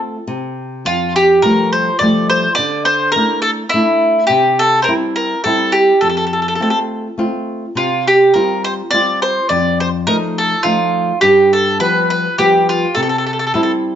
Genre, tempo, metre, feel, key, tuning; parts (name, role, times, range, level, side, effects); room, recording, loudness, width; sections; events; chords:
italian folk; 104 BPM; 3/4; swing 54% on 8ths; F major; A4 = 441 Hz
flamenco guitar; accompaniment; 0.0-14.0 s; F2 to F4; -19 LUFS; left 2 dB
mandolin; melody; 0.9-13.7 s; E4 to D5; -13 LUFS; right 1 dB; plate reverb
moderate studio reverb, RT60 0.6 s; nothing above 7.8 kHz; -12 LUFS; side -9 dB against mid
0.0-14.0 A section
0.3 N.C.; 0.8 Fadd9; 2.6 Dsus2; 4.3 C; 6.0 F; 7.8 Csus4; 9.5 F7; 11.2 G7; 13.0 C